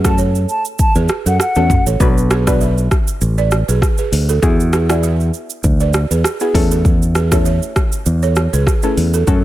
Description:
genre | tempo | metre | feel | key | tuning
afrobeats | 99 BPM | 4/4 | swing 55% on 16ths | unclear | A4 = 440 Hz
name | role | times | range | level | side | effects
soft round pluck | accompaniment | 0.0-9.4 s | A3 to B4 | -21 LUFS | left 4 dB | chorus
balafon | riff | 0.0-9.2 s | F#4 to E5 | -23 LUFS | right 9 dB | digital delay
fingered electric bass | bass | 0.0-9.4 s | A1 to F#2 | -15 LUFS | equal | none
afro-pop drum kit | drums | 0.0-9.4 s | hi-hat, kick drum, rim click, shaker, toms | -16 LUFS | equal | none
mellow hollow silver concert flute | melody | 0.1-1.8 s | F#5 to A5 | -20 LUFS | left 1 dB | digital delay
room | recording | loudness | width
little or no reverb | none | -12 LUFS | side -14 dB against mid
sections
0.0-9.4 A section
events
none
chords
0.0 F#m; 2.0 Bm; 4.4 Eadd9; 6.5 A/E

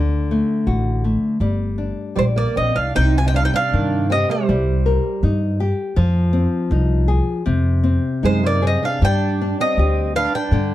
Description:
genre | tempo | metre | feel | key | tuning
fado-style ballad | 75-84 BPM | 2/4 | rubato | C minor | A4 = 439 Hz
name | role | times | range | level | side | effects
nylon-string guitar | accompaniment | 0.0-10.7 s | C3 to D5 | -22 LUFS | left 3 dB | none
upright bass | bass | 0.0-10.7 s | G1 to G2 | -18 LUFS | equal | none
bowl-back mandolin | melody | 2.2-5.6, 8.3-10.7 s | C5 to Ab5 | -22 LUFS | right 1 dB | none
fingerpicked twelve-string acoustic guitar | second line | 2.2-5.5, 8.2-10.7 s | G3 to F4 | -24 LUFS | right 5 dB | slapback echo
room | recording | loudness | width
light reverb | dark, warm production | -16 LUFS | side -14 dB against mid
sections
0.0-3.0 A section; 3.0-10.7 B section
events
none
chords
0.0 D; 1.4 Gm; 3.0 Cm; 6.0 Fm7; 9.0 G

